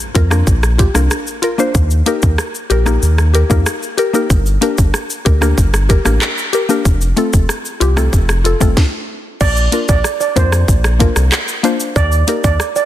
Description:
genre	dancehall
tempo	94 BPM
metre	4/4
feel	straight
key	Bb major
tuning	A4 = 439 Hz
part	impact	sound effects	0.0-1.7 s	none	-36 LUFS	equal	none
part	mallet-like synth pluck	accompaniment	0.1-12.4 s	A3 to C5	-18 LUFS	left 3 dB	chorus
part	round analog bass	bass	0.2-12.6 s	F1 to F2	-14 LUFS	equal	none
part	island pop drum kit	drums	0.2-12.9 s	crash cymbal, handclaps, hi-hat, kick drum, rim click, shaker, snare drum	-16 LUFS	equal	soft clipping on snare
part	tube shaker	percussion	4.3-12.9 s	none	-31 LUFS	right 8 dB	none
part	steel pan	melody	9.4-12.9 s	C5 to D5	-18 LUFS	right 6 dB	tape echo
room	light reverb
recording	dense, heavily limited modern master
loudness	-11 LUFS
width	side -13 dB against mid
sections	0.0-9.4 A section; 9.4-12.9 B section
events	impact 0.0-1.7; stop 8.8-9.4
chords	0.0 Bb; 1.7 Eb; 4.3 Gm; 6.9 F; 9.4 Bb; 12.0 Eb

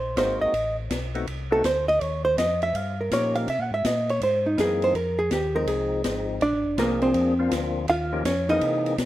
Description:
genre	soul jazz organ trio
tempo	163 BPM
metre	4/4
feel	swing 66% on 8ths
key	unclear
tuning	A4 = 440 Hz
part	hollow-body jazz guitar	accompaniment	0.0-9.0 s	Bb3 to Gb5	-23 LUFS	right 1 dB	none
part	mellow tonewheel organ	bass	0.0-9.1 s	F1 to C3	-30 LUFS	left 1 dB	slow rotary speaker
part	percussive tonewheel organ	melody	0.2-9.0 s	E3 to G#4	-30 LUFS	left 4 dB	slow rotary speaker, overdrive
part	open jazz drum kit	drums	0.2-9.1 s	hi-hat, kick drum, ride cymbal, snare drum	-32 LUFS	left 1 dB	none
room	light reverb, studio reverb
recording	rough home demo mix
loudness	-22 LUFS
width	side -14 dB against mid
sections	0.0-9.1 A section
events	hollow-body jazz guitar solo 0.0-9.1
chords	0.0 Ab9; 0.5 Adim7; 2.0 Eb9; 3.5 C7alt; 4.9 Fm7; 6.4 Bb9; 7.9 Eb9

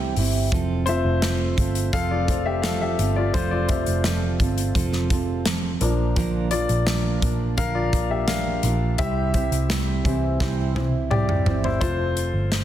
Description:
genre	piano-driven pop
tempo	85 BPM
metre	4/4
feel	straight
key	F major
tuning	A4 = 440 Hz
part	warm grand piano	accompaniment	0.0-12.6 s	E3 to G5	-26 LUFS	left 5 dB	none
part	fingerpicked steel-string acoustic guitar	riff	0.0-11.8 s	Bb2 to C5	-27 LUFS	right 6 dB	none
part	vintage muted picked electric bass	bass	0.0-12.6 s	F1 to C2	-25 LUFS	equal	none
part	modern studio drum kit	drums	0.2-12.6 s	hi-hat, kick drum, snare drum, toms	-26 LUFS	equal	none
room	light reverb, small room ambience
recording	dense, heavily limited modern master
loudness	-20 LUFS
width	side -11 dB against mid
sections	0.0-11.8 A section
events	grand piano solo 0.0-11.8; drum fill 10.4-11.8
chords	0.0 C; 0.5 F; 5.8 Bb; 9.0 C; 11.8 F

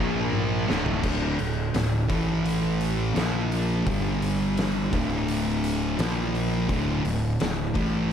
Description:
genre	stoner and doom metal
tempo	85 BPM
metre	4/4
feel	straight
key	D minor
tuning	A4 = 439 Hz
part	scooped high-gain guitar	riff	0.0-1.0 s	D2 to Bb3	-32 LUFS	left 1 dB	distortion
part	thick fuzz guitar	riff	0.0-8.1 s	D2 to Bb3	-28 LUFS	left 8 dB	distortion
part	thick fuzz guitar	riff	0.0-8.1 s	D2 to Bb3	-28 LUFS	right 7 dB	distortion
part	fuzz fingered electric bass	bass	0.0-8.1 s	D1 to Bb1	-30 LUFS	equal	overdrive
part	oversized low-tuned drum kit	drums	0.3-7.9 s	crash cymbal, hi-hat, kick drum, snare drum, toms	-30 LUFS	equal	none
room	studio reverb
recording	none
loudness	-23 LUFS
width	side -8 dB against mid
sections	0.0-1.0 A section; 1.0-8.1 B section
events	drum fill 0.3-1.0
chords	0.0 Bb5; 0.7 D5; 2.1 A5; 3.2 Bb5; 3.9 G5; 4.9 D5; 6.0 Bb5; 6.7 D5

